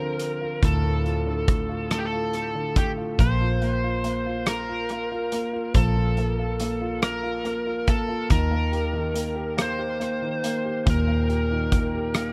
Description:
six-eight pop ballad; 47 BPM (dotted quarters); 6/8; straight; Bb major; A4 = 441 Hz
overdriven slide guitar; melody; 0.0-12.3 s; G4 to C5; -31 LUFS; equal; dub echo
warm concert grand piano; accompaniment; 0.0-12.3 s; A2 to G4; -31 LUFS; equal; dub echo
vintage muted fingered electric bass; bass; 0.0-12.3 s; Bb1 to Eb2; -28 LUFS; equal
loose indie drum kit; drums; 0.2-12.3 s; hi-hat, kick drum, rim click; -26 LUFS; equal
studio reverb; echo-heavy mix; -25 LUFS; mono
0.0-12.3 A section
grand piano fill 12.2
0.0 Dm7; 3.2 Bb5; 8.3 Eb

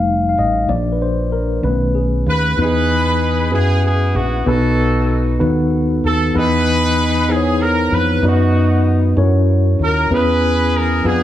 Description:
slow gospel; 64 BPM (dotted quarters); 6/8; straight; A4 = 440 Hz
mellow tine electric piano; accompaniment; 0.0-11.2 s; B2 to F5; -17 LUFS; left 2 dB; medium stereo tremolo
fingered electric bass; bass; 0.0-11.2 s; F1 to F#2; -17 LUFS; equal
clear horn section; melody; 2.3-11.2 s; B3 to B4; -18 LUFS; right 1 dB
small room ambience; studio ambience; -13 LUFS; side -12 dB against mid
0.0-2.6 A section; 2.6-11.2 B section
tine electric piano solo 0.0-2.6
0.0 F7; 0.7 Bb; 1.6 B7; 2.6 Emaj7; 3.5 F#9sus4; 4.5 B7; 5.4 B7/D#; 6.3 Emaj7; 8.2 B/F#; 9.2 F#7; 10.1 E6

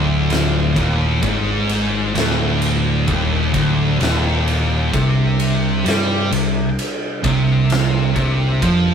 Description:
stoner and doom metal; 65 BPM; 4/4; straight; D minor; A4 = 440 Hz
percussive tonewheel organ; sustained chords; 0.0-8.9 s; C3 to E4; -33 LUFS; left 1 dB
heavy high-gain guitar; riff; 0.0-8.9 s; D2 to G3; -23 LUFS; left 1 dB; distortion
thick fuzz guitar; riff; 0.0-8.9 s; D2 to G3; -23 LUFS; left 8 dB; distortion
thick fuzz guitar; riff; 0.0-8.9 s; D2 to G3; -20 LUFS; right 7 dB; distortion
overdriven picked electric bass; bass; 0.0-8.9 s; D1 to G2; -21 LUFS; left 1 dB
oversized low-tuned drum kit; drums; 0.3-8.8 s; kick drum, ride cymbal, snare drum; -23 LUFS; equal
light reverb; rough rehearsal-room recording, warm saturation; -15 LUFS; side -7 dB against mid
0.0-8.9 A section
0.0 D5; 4.9 C5

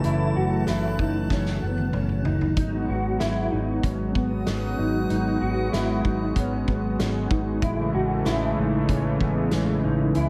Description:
dream pop; 95 BPM; 4/4; straight; A4 = 445 Hz
warm analog pad; sustained chords; 0.0-10.3 s; C#3 to F#4; -28 LUFS; equal; chorus
mellow electric guitar; arpeggios; 0.0-10.3 s; B3 to F#4; -31 LUFS; equal; ensemble chorus, delay
vintage muted fingered electric bass; bass; 0.0-10.3 s; F#1 to C#2; -31 LUFS; equal
loose indie drum kit; drums; 0.0-10.3 s; hi-hat, kick drum, snare drum, toms; -31 LUFS; equal
drifting glass-harmonics texture; texture; 0.0-5.5 s; A5 to F#6; -42 LUFS; equal; chorus, built-in reverb, delay
wet plate reverb, RT60 1.2 s, small room reverb; dreamy mix soaked in reverb; -24 LUFS; mono
0.0-10.3 A section
drum fill 1.3-2.6
0.0 F#m7; 2.6 G#m7; 7.6 Amaj7

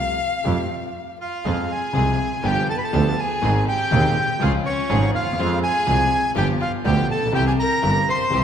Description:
tango; 122 BPM; 4/4; rubato; A4 = 440 Hz
warm violin; second line; 0.0-8.4 s; Db4 to F5; -27 LUFS; left 3 dB
warm concert grand piano; accompaniment; 0.0-8.4 s; Eb1 to Ab4; -24 LUFS; left 2 dB
rich chamber string section; stabs; 0.0-8.4 s; A3 to Ab4; -31 LUFS; right 2 dB
clear double bass; bass; 0.0-8.4 s; G1 to F2; -23 LUFS; right 2 dB
bandoneon; melody; 1.2-8.4 s; Db5 to C6; -23 LUFS; right 1 dB
wet concert hall reverb, RT60 2.0 s; minimal, uncompressed stereo recording; -18 LUFS; side -8 dB against mid
0.0-1.4 A section; 1.4-8.4 B section
violin solo 0.0-1.4; stop 0.9-1.4
0.0 Fadd9; 1.4 Fm; 2.4 G7; 3.4 Ab; 4.4 Db; 5.4 Fm; 6.3 G7; 7.3 C

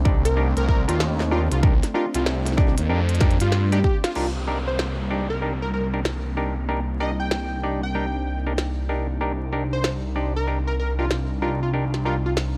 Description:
glitch hop; 95 BPM; 4/4; swing 63% on 16ths; C dorian; A4 = 440 Hz
warm analog pad; sustained chords; 0.0-12.6 s; A3 to Eb4; -36 LUFS; equal; chorus, sidechain pumping
phased detuned saw bass; bass; 0.0-12.6 s; C2 to G2; -26 LUFS; equal; phaser, tube saturation
mellow clav; stabs; 0.1-12.2 s; D4 to D5; -32 LUFS; equal; sidechain pumping, dub echo
electronic kick drum; drums; 0.1-4.0 s; -22 LUFS; equal
plucky unison lead; melody; 0.3-12.3 s; F4 to G5; -32 LUFS; equal; cassette tape, dub echo
glitchy drum kit; drums; 0.3-12.5 s; crash cymbal, hi-hat, snare drum; -30 LUFS; equal
downlifter; sound effects; 4.2-9.2 s; -40 LUFS; equal
little or no reverb; vinyl crackle; -23 LUFS; mono
0.0-4.2 A section; 4.2-12.6 B section
drum fill 3.2-4.2; band accent 4.0-4.3; filter sweep on analog synth pad 4.2-12.6
0.0 Cm9

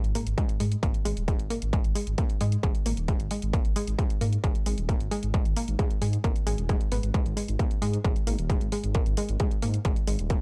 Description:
driving peak-time techno; 133 BPM; 4/4; straight; A4 = 440 Hz
dark detuned saw bass; bass; 0.0-10.3 s; D#1 to G#2; -31 LUFS; equal; sidechain pumping
electronic hi-hat; drums; 0.0-10.4 s; -42 LUFS; equal; overdrive, sidechain pumping on hats
analog pluck; riff; 0.2-10.3 s; G#3 to B3; -36 LUFS; equal; chorus, sidechain pumping, tape echo
electronic kick drum; drums; 0.4-10.4 s; -29 LUFS; equal; distortion, overdrive
digital ambience; dry, gritty hardware recording, transformer saturation, cassette tape; -27 LUFS; mono
0.0-10.4 A section
0.0 G#5

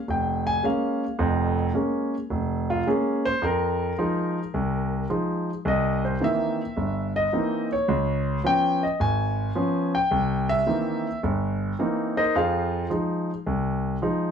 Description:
jazz; 108 BPM; 4/4; swing 67% on 8ths; F minor; A4 = 440 Hz
warm grand piano; solo; 0.0-14.3 s; F1 to Ab5; -22 LUFS; equal
wet studio ambience, RT60 0.5 s; heard from further back in the room; -22 LUFS; side -7 dB against mid
0.0-14.3 A section
0.0 Bbm7; 3.4 Fm7; 5.7 C7#9; 7.9 Db7; 10.1 C7#9; 12.3 Fm7

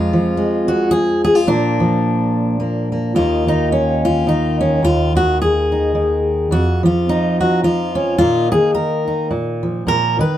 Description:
folk, solo fingerstyle acoustic guitar; 107 BPM; 3/4; swing 58% on 8ths; Eb minor; A4 = 438 Hz
fingerpicked steel-string acoustic guitar; solo; 0.0-10.4 s; Eb2 to Cb5; -14 LUFS; equal
moderate small room reverb, RT60 0.5 s; band playing live in one room; -14 LUFS; side -12 dB against mid
0.0-3.2 A section; 3.2-10.4 B section
0.0 Fm; 1.5 Bb; 3.2 Eb5; 4.8 N.C.; 8.2 Bbsus4; 9.3 Bb5; 9.9 Bbsus4

